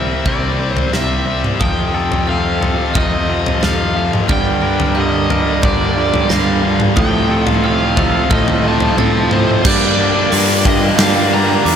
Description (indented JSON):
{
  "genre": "post-rock",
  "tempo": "90 BPM",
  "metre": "4/4",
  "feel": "straight",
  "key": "G minor",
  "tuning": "A4 = 440 Hz",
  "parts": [
    { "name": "cranked stack guitar", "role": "melody", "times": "0.0-11.8 s", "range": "C5 to Bb5", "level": "-20 LUFS", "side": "right 1 dB", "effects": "overdrive, tape echo" },
    { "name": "dark chamber string section", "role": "sustained chords", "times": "0.0-11.8 s", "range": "F3 to G5", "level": "-29 LUFS", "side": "right 2 dB", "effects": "none" },
    { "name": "glockenspiel with soft plastic mallets", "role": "arpeggios", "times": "0.0-11.8 s", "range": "D6 to Bb6", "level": "-28 LUFS", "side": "right 6 dB", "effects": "slapback echo, tape echo" },
    { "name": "twangy electric guitar", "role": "arpeggios", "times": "0.0-9.7 s", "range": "G2 to Bb4", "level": "-27 LUFS", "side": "equal", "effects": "none" },
    { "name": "tight distorted guitar", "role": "riff", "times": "0.0-11.8 s", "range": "F2 to D4", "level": "-19 LUFS", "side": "left 7 dB", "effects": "distortion, slapback echo" },
    { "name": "fuzz fingered electric bass", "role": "bass", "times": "0.0-11.8 s", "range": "C2 to A2", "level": "-20 LUFS", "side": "equal", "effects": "overdrive" },
    { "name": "huge arena drum kit", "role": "drums", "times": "0.3-11.8 s", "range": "crash cymbal, hi-hat, kick drum, snare drum, toms", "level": "-18 LUFS", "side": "equal", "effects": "none" },
    { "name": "cranked stack guitar", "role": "riff", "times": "4.3-11.8 s", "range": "F2 to D4", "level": "-20 LUFS", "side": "right 11 dB", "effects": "overdrive, slapback echo" }
  ],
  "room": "moderate lush hall reverb, RT60 2.4 s",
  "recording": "big arena sound",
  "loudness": "-12 LUFS",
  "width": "side -8 dB against mid",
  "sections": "0.0-9.7 A section; 9.7-11.8 B section",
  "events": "build-up 0.0-9.7",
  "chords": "0.0 C7; 1.6 F7; 4.3 Gm7; 7.0 F7; 9.7 Gm7",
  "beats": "0.27 0.94 | 1.61 2.28 2.95 3.62 | 4.30 4.97 5.64 6.31 | 6.98 7.65 8.32 8.99 | 9.66 10.32 10.99 11.66"
}